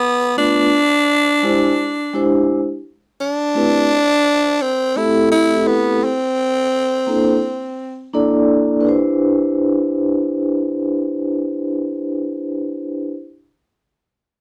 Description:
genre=hip hop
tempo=85 BPM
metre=4/4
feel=swing 62% on 16ths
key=C major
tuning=A4 = 439 Hz
part: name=growling tenor saxophone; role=melody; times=0.0-8.2 s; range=B3 to E4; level=-18 LUFS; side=equal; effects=none
part: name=vibraphone with soft mallets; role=accompaniment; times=0.4-13.2 s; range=Ab3 to D5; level=-19 LUFS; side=equal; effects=none
room=light reverb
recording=dry, gritty hardware recording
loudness=-17 LUFS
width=mono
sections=0.0-8.8 A section; 8.8-11.7 B section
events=none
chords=0.4 Bm7b5; 1.8 E7alt; 3.2 Am7; 6.0 C13; 8.8 Cmaj9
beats=| 0.38 1.09 1.79 2.50 | 3.20 3.91 4.62 5.32 | 6.03 6.73 7.44 8.14 | 8.85 9.56 10.26 10.97

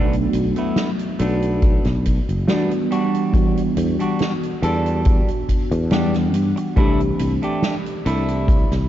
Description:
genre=vaporwave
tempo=70 BPM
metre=4/4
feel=swing 53% on 16ths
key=unclear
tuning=A4 = 439 Hz
part: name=mellow FM electric piano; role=accompaniment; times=0.0-8.9 s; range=E3 to F#5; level=-22 LUFS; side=equal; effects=phaser, lush chorus, analog delay
part: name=semi-hollow electric guitar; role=riff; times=0.0-8.7 s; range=G3 to A4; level=-26 LUFS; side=right 1 dB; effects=wide subtle chorus, vintage 12-bit sampler grit, analog delay
part: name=sustaining fretless electric bass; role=bass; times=0.0-8.9 s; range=F#1 to G2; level=-21 LUFS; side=equal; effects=none
part: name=soft-mallet drum kit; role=drums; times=0.1-8.9 s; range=hi-hat, snare drum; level=-28 LUFS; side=right 2 dB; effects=studio reverb
part: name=kick drum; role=drums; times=1.6-8.7 s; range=none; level=-19 LUFS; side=equal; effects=studio reverb
room=light reverb, small room ambience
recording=dark, warm production, cassette tape, nothing above 7.6 kHz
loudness=-17 LUFS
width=side -12 dB against mid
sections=0.0-8.9 A section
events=none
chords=0.0 Bm7; 2.9 Em9; 6.8 C69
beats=0.77 1.63 2.48 | 3.34 4.20 5.06 5.91 | 6.77 7.63 8.48

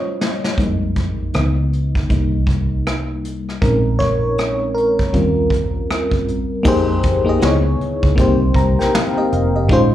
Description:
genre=R&B, neo-soul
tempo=79 BPM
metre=4/4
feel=swing 60% on 16ths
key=unclear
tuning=A4 = 440 Hz
part: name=FM electric piano with tremolo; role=accompaniment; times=0.0-9.9 s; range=Fb3 to Bb5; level=-18 LUFS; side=left 1 dB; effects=slapback echo
part: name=vintage brush drum kit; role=drums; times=0.2-9.9 s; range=crash cymbal, hi-hat, kick drum, rim click, snare drum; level=-20 LUFS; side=equal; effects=none
part: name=vintage muted fingered electric bass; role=bass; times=0.6-9.9 s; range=F1 to F2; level=-20 LUFS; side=equal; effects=none
room=light reverb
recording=live gig heard through the venue's PA, club reverb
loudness=-15 LUFS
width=side -12 dB against mid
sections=0.0-6.7 A section; 6.7-9.9 B section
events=drum fill 0.0-0.6; FM electric piano solo 0.0-6.7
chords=0.0 Eb13/G; 0.6 Fm11; 1.3 Dbm7; 2.1 Cm7; 3.6 Bbm11; 5.1 Eb13; 6.7 Fm11; 7.4 Dbm7; 8.2 Cm7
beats=| 0.58 1.34 2.10 2.86 | 3.62 4.38 5.13 5.89 | 6.65 7.41 8.17 8.93 | 9.69

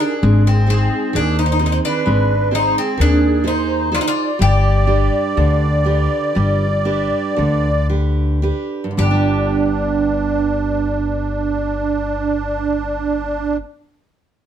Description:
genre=greek folk, Greek bouzouki band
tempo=109-131 BPM (eighths)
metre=9/8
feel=straight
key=unclear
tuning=A4 = 440 Hz
part: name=Greek bouzouki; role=melody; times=0.0-13.6 s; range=C4 to G4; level=-20 LUFS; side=left 1 dB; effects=plate reverb
part: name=musette accordion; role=second line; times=0.0-13.6 s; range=D4 to D5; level=-21 LUFS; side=right 3 dB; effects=none
part: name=picked steel-string acoustic guitar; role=accompaniment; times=0.0-13.7 s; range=G2 to C5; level=-23 LUFS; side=right 4 dB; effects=none
part: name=upright bass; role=bass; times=0.2-13.6 s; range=G1 to Eb2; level=-18 LUFS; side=left 1 dB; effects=none
room=moderate studio reverb, RT60 0.6 s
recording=dark, warm production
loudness=-15 LUFS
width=side -9 dB against mid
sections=0.0-9.0 A section; 9.0-13.9 B section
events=slowing down 1.1-9.0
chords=0.2 Ab; 4.4 G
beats=| 0.23 0.69 1.15 1.60 2.06 2.52 2.99 3.45 3.92 | 4.40 4.88 5.36 5.85 6.35 6.86 7.37 7.90 8.43 | 8.97 9.52 10.07 10.62 11.16 11.71 12.25 12.80 13.34

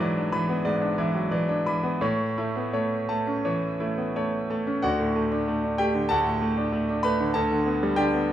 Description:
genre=classical, virtuoso piano study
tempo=83-96 BPM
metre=4/4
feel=rubato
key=D major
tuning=A4 = 445 Hz
part: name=bright concert grand piano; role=solo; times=0.0-8.3 s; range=D2 to B5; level=-23 LUFS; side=equal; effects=none
room=wet large studio reverb, RT60 1.3 s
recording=minimal, uncompressed stereo recording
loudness=-23 LUFS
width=side -11 dB against mid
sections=0.0-4.8 A section; 4.8-8.3 B section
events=none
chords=0.0 E7/G#; 2.0 A; 4.8 D; 7.4 G/D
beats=0.00 0.65 1.31 | 2.01 2.73 3.44 4.14 | 4.82 5.47 6.10 6.73 | 7.36 7.99

